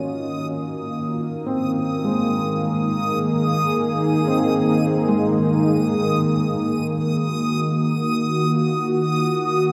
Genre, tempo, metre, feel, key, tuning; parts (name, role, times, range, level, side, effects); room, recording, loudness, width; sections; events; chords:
ambient; free time; Eb dorian; A4 = 441 Hz
warm analog pad; sustained chords; 0.0-9.7 s; Eb3 to Ab4; -22 LUFS; equal; chorus
felt-muted upright piano; arpeggios; 0.0-8.1 s; Ab3 to Eb5; -28 LUFS; equal; diffuse ambient delay
backwards swelling texture; texture; 0.3-9.7 s; Eb6; -30 LUFS; equal; built-in reverb
wet cathedral reverb, RT60 6.5 s; dark, warm production; -21 LUFS; mono
0.0-7.0 A section; 7.0-9.7 B section
fade-in on analog synth pad 0.0-7.0; fade-in on felt piano 0.0-7.0; fade-in on synth texture 0.0-7.0
0.0 Ebm7; 7.0 Ebm